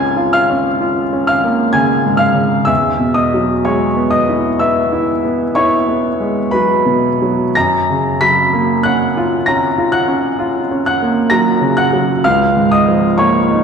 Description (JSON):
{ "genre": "classical, impressionist solo piano", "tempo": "63 BPM", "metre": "5/4", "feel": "rubato", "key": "unclear", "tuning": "A4 = 436 Hz", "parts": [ { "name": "clear baby grand piano", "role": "solo", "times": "0.0-13.6 s", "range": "Db2 to Cb7", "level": "-12 LUFS", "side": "equal", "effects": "none" } ], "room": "wet concert hall reverb, RT60 2.1 s", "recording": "recorded in a church or concert hall", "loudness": "-12 LUFS", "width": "side -6 dB against mid", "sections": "0.0-13.6 A section", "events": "none", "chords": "0.0 Db6; 2.7 Eadd9; 7.5 Gbmaj7; 12.2 Db69" }